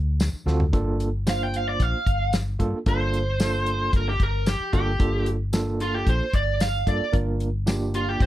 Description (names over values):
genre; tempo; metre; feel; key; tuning
straight-eighth soul blues; 112 BPM; 4/4; straight; G minor; A4 = 440 Hz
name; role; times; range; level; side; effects
vintage muted fingered electric bass; bass; 0.0-8.3 s; G1 to G2; -25 LUFS; equal; none
warm soul drum kit; drums; 0.2-8.3 s; hi-hat, kick drum, snare drum, tambourine, toms; -24 LUFS; equal; none
overdriven tine electric piano; accompaniment; 0.5-8.3 s; Bb3 to C5; -28 LUFS; right 3 dB; fast tremolo
smooth overdriven lead guitar; melody; 1.3-8.3 s; F4 to G5; -26 LUFS; right 1 dB; none
room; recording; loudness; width
little or no reverb; dry, close 1970s-style studio recording; -21 LUFS; side -14 dB against mid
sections
0.7-8.3 A section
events
drum fill 0.5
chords
0.0 D7#9; 0.7 Gm7